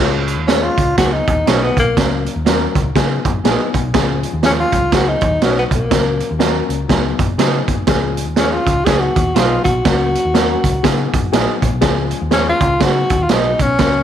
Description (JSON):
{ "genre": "uptempo 1960s-style soul", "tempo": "122 BPM", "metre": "4/4", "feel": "swing 60% on 8ths", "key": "Db mixolydian", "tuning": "A4 = 440 Hz", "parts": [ { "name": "dark upright piano", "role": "accompaniment", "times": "0.0-14.0 s", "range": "F3 to Db5", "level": "-21 LUFS", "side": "left 10 dB", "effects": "none" }, { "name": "hollow-body short-scale picked electric bass", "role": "bass", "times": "0.0-14.0 s", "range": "Gb1 to Db3", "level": "-21 LUFS", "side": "left 1 dB", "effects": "none" }, { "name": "raw garage drum kit", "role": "drums", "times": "0.3-13.9 s", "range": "hi-hat, kick drum, snare drum", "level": "-17 LUFS", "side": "right 4 dB", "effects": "none" }, { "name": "breathy tenor saxophone", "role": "melody", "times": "0.5-14.0 s", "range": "Bb3 to Ab4", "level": "-17 LUFS", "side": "left 1 dB", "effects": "none" }, { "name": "electric guitar through a small old amp", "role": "stabs", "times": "0.5-13.5 s", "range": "Db4 to Eb5", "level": "-27 LUFS", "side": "right 7 dB", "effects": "none" } ], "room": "moderate echo chamber reverb, RT60 1.3 s, small room ambience", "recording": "1960s-style stereo with parts hard left and right", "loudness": "-13 LUFS", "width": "side -9 dB against mid", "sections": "0.0-14.0 A section", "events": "none", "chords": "0.0 Db; 1.0 Abm7/Db; 2.0 Gb/Db; 3.0 Cb6; 3.9 Db; 4.9 Abm7/Db; 5.9 Gb/Db; 6.9 Cb6; 7.9 Db; 8.9 Abm7/Db; 9.9 Gb/Db; 10.8 Cb6; 11.8 Db; 12.8 Abm7" }